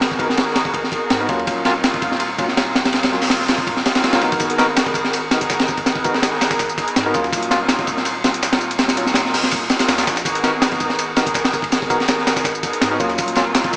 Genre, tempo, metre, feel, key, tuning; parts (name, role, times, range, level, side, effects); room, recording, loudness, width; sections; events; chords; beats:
drum and bass, jungle; 164 BPM; 4/4; swing 54% on 16ths; G# minor; A4 = 440 Hz
muted studio string section; sustained chords; 0.0-13.8 s; F#3 to A#4; -21 LUFS; equal
soft dub sub bass; bass; 0.0-13.8 s; D#1 to G#2; -35 LUFS; equal
crunchy breakbeat drum kit; drums; 0.0-13.8 s; hi-hat, kick drum, ride cymbal, snare drum; -18 LUFS; equal
bell-like tine electric piano; stabs; 0.2-13.4 s; F#3 to A#4; -22 LUFS; left 1 dB; medium stereo tremolo, dub echo
dusty soul sampler-style drum kit; drums; 4.4-13.8 s; hi-hat, snare drum, tambourine; -25 LUFS; equal; high-pass filter on perc, high-pass filter on hats, high-pass filter on snare, high-pass filter on room
light reverb, studio ambience; vinyl crackle, small speaker sound; -15 LUFS; side -26 dB against mid
0.0-13.8 A section
0.0 G#m9; 1.5 D#m9; 4.4 G#m9; 7.3 D#m9; 10.3 G#m9; 13.2 D#m9
| 0.01 0.38 0.74 1.11 | 1.47 1.84 2.21 2.57 | 2.94 3.30 3.67 4.04 | 4.40 4.77 5.13 5.50 | 5.87 6.23 6.60 6.96 | 7.33 7.69 8.06 8.43 | 8.79 9.16 9.52 9.89 | 10.26 10.62 10.99 11.35 | 11.72 12.08 12.45 12.82 | 13.18 13.55